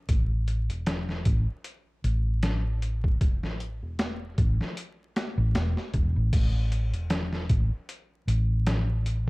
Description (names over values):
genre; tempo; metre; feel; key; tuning
trip hop; 77 BPM; 4/4; swing 56% on 16ths; unclear; A4 = 440 Hz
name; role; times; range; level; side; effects
hollow-body short-scale fingered electric bass; bass; 0.1-9.3 s; E1 to A1; -26 LUFS; equal; tube saturation
trip hop sampler-style drum kit; drums; 0.1-9.3 s; crash cymbal, hi-hat, kick drum, snare drum; -28 LUFS; equal; vintage 12-bit sampler grit
room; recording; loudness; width
little or no reverb; dark, warm production, vinyl crackle, faint mains hum; -25 LUFS; side -24 dB against mid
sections
0.0-6.3 A section; 6.3-9.3 B section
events
none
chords
none